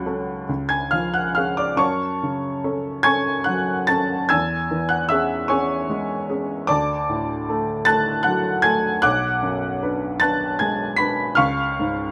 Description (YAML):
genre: classical, romantic nocturne for solo piano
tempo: 44-53 BPM (dotted quarters)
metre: 12/8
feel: rubato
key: unclear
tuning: A4 = 440 Hz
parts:
  - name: warm upright piano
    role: solo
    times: 0.0-12.1 s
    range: B1 to B6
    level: -21 LUFS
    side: equal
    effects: none
room: light reverb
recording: close, detailed microphones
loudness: -21 LUFS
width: mono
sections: 0.0-12.1 A section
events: none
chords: 0.5 C#; 1.8 F#m; 4.3 C#m/E; 6.7 D; 9.0 G#m7b5/B; 11.4 C#